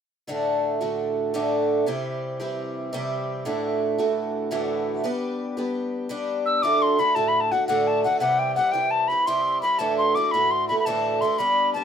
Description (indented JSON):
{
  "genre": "celtic folk",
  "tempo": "113 BPM (dotted quarters)",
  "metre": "9/8",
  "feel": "straight",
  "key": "D mixolydian",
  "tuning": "A4 = 441 Hz",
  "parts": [
    { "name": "picked twelve-string acoustic guitar", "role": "accompaniment", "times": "0.3-11.8 s", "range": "D2 to G4", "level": "-24 LUFS", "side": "right 2 dB", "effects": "none" },
    { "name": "mellow hollow wooden whistle", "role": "melody", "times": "6.5-11.8 s", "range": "F#5 to E6", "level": "-21 LUFS", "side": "left 2 dB", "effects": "none" }
  ],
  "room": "moderate small room reverb, RT60 0.5 s",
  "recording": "minimal, uncompressed stereo recording",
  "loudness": "-21 LUFS",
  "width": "side -8 dB against mid",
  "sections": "0.3-6.6 A section; 6.6-11.8 B section",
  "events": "none",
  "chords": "0.3 D; 1.9 C; 3.5 Dadd9; 5.0 G; 6.6 D; 8.2 C; 9.8 Dadd9",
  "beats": "| 0.28 0.81 1.33 | 1.86 2.39 2.92 | 3.45 3.98 4.51 | 5.04 5.57 6.09 | 6.62 7.15 7.68 | 8.21 8.74 9.27 | 9.80 10.32 10.86 | 11.38"
}